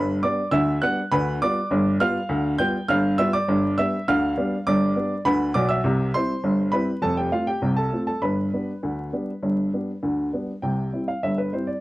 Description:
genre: ragtime piano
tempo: 101 BPM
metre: 2/4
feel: straight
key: unclear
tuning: A4 = 440 Hz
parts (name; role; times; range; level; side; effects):
- warm upright piano; solo; 0.0-11.8 s; F1 to G6; -21 LUFS; equal; none
room: light reverb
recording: dry, close 1970s-style studio recording, vinyl crackle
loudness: -21 LUFS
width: side -18 dB against mid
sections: 0.0-10.6 A section; 10.6-11.8 B section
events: none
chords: 0.0 G; 1.1 G7; 5.8 C; 7.0 F; 8.2 G; 10.6 C

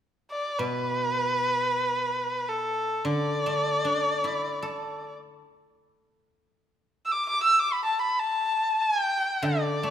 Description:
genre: chinese traditional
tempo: free time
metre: none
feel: none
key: D zhi mode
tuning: A4 = 440 Hz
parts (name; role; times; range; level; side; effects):
- warm erhu; melody; 0.3-9.9 s; A4 to E6; -25 LUFS; equal; none
- guzheng; accompaniment; 0.6-9.9 s; B2 to A4; -31 LUFS; equal; none
room: wet recital hall reverb, RT60 1.7 s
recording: minimal, uncompressed stereo recording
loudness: -24 LUFS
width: side -10 dB against mid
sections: 0.0-9.9 A section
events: none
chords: none

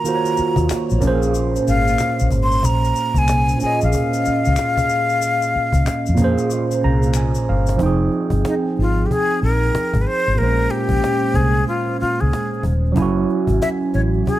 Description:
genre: R&B, neo-soul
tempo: 93 BPM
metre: 4/4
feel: swing 63% on 16ths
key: F minor from 7.8 s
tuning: A4 = 440 Hz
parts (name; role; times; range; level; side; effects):
- breathy jazz flute; melody; 0.0-14.4 s; Eb4 to C6; -21 LUFS; left 2 dB; slapback echo
- overdriven tine electric piano; accompaniment; 0.0-14.4 s; Bb2 to Bb5; -20 LUFS; right 3 dB; phaser
- cajon; drums; 0.0-14.4 s; none; -26 LUFS; left 1 dB; none
- tube shaker and finger snaps; percussion; 0.1-7.8 s; none; -34 LUFS; left 8 dB; none
- vintage muted fingered electric bass; bass; 0.4-14.2 s; Eb1 to F2; -18 LUFS; left 1 dB; none
room: little or no reverb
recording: none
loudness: -16 LUFS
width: side -14 dB against mid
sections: 0.0-7.8 A section; 7.8-14.4 B section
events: tine electric piano fill 6.5-7.8; drum fill 7.1-7.8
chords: 0.0 Ebm9; 1.0 Bbm9; 7.8 Fm9; 10.4 Bbm9; 13.0 Gbm9

